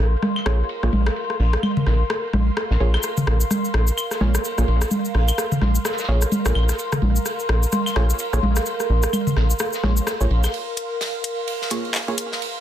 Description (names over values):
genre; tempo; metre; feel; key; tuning
minimal techno; 128 BPM; 4/4; swing 59% on 16ths; Bb minor; A4 = 439 Hz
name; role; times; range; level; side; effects
rubbery square bass; bass; 0.0-10.5 s; Bb1; -18 LUFS; equal; none
natural country drum kit; drums; 0.0-12.5 s; hi-hat, ride cymbal, snare drum; -34 LUFS; right 1 dB; high-pass filter on cymbals, low-pass filter on cymbals, small room ambience, high-pass filter on hats, low-pass filter on hats, high-pass filter on snare, low-pass filter on snare, high-pass filter on room, low-pass filter on room
ethereal airy pad; texture; 0.0-12.6 s; Bb4 to C6; -28 LUFS; equal; ensemble chorus, built-in reverb, phaser
booming analog drum machine; percussion; 0.2-10.5 s; claves, congas, rim click, toms; -23 LUFS; equal; soft clipping on snare, small room ambience, tape echo
filtered dub chord stab; stabs; 0.5-12.1 s; Bb3 to Db5; -29 LUFS; right 4 dB; chorus, tape echo
cabasa; percussion; 3.0-10.5 s; none; -30 LUFS; left 3 dB; none
garage drum kit; drums; 10.8-12.3 s; handclaps, hi-hat; -24 LUFS; left 2 dB; high-pass filter on hats, small room ambience, high-pass filter on snare
room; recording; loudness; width
little or no reverb; dense, heavily limited modern master; -19 LUFS; side -11 dB against mid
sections
0.0-10.5 A section; 10.5-12.6 B section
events
build-up 10.5-12.6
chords
0.0 Bb5